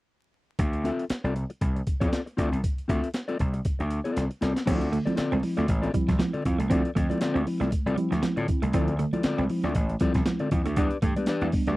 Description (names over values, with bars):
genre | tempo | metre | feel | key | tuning
funk | 118 BPM | 4/4 | swing 56% on 16ths | D dorian | A4 = 442 Hz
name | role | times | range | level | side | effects
gritty slap bass | bass | 0.6-11.8 s | A1 to A2 | -28 LUFS | equal | overdrive
breakbeat sampler-style drum kit | drums | 0.6-11.8 s | crash cymbal, hi-hat, kick drum, snare drum | -28 LUFS | equal | none
mellow electric guitar | accompaniment | 0.8-11.8 s | C4 to E5 | -29 LUFS | left 3 dB | none
semi-hollow electric guitar | riff | 4.7-11.8 s | F3 to C4 | -30 LUFS | right 4 dB | none
mellow tine electric piano | stabs | 4.7-11.7 s | D3 to E4 | -30 LUFS | right 1 dB | medium stereo tremolo
congas | percussion | 4.7-11.5 s | none | -36 LUFS | right 2 dB | none
room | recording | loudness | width
little or no reverb | dry, close 1970s-style studio recording, vinyl crackle | -24 LUFS | side -18 dB against mid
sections
0.6-4.7 A section; 4.7-11.8 B section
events
drum fill 4.2-4.7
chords
0.6 Dm7; 10.8 Em7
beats
| 0.59 1.10 1.61 2.12 | 2.63 3.14 3.65 4.16 | 4.67 5.18 5.69 6.20 | 6.71 7.21 7.72 8.23 | 8.74 9.25 9.76 10.26 | 10.77 11.28